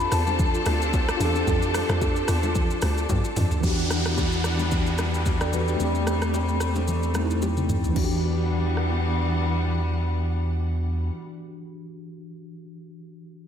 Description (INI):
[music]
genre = amapiano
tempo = 111 BPM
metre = 4/4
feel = swing 55% on 16ths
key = E minor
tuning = A4 = 441 Hz
[part]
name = worn celesta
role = melody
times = 0.0-3.1 s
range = A5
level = -30 LUFS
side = left 6 dB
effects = tape echo
[part]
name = mellow tine electric piano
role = accompaniment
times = 0.0-13.5 s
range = E3 to D5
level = -29 LUFS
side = equal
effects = medium stereo tremolo
[part]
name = warm studio string section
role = sustained chords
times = 0.0-11.1 s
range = E3 to F#5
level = -29 LUFS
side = left 2 dB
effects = none
[part]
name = hollow log drum bass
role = bass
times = 0.0-3.5 s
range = D2 to G2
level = -26 LUFS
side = equal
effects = none
[part]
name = afro-pop drum kit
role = drums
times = 0.0-8.9 s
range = crash cymbal, hi-hat, kick drum, rim click, shaker, toms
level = -28 LUFS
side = equal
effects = none
[part]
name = bongos and congas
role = percussion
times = 0.3-8.2 s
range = none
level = -34 LUFS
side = left 4 dB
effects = none
[part]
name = warm sub bass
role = bass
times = 3.6-11.1 s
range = E2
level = -26 LUFS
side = equal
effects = none
[part]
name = downlifter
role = sound effects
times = 3.6-8.0 s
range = none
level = -33 LUFS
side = equal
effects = none
[sound]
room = moderate lush hall reverb, RT60 1.6 s, digital ambience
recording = dreamy mix soaked in reverb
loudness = -22 LUFS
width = side -8 dB against mid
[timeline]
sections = 0.0-3.6 A section; 3.6-8.0 B section; 8.0-12.3 C section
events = drop 0.0-3.6; drum fill 3.1-3.6, 7.4-8.0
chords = 0.0 F69; 3.6 Em9; 5.8 Am7/E; 8.0 Em9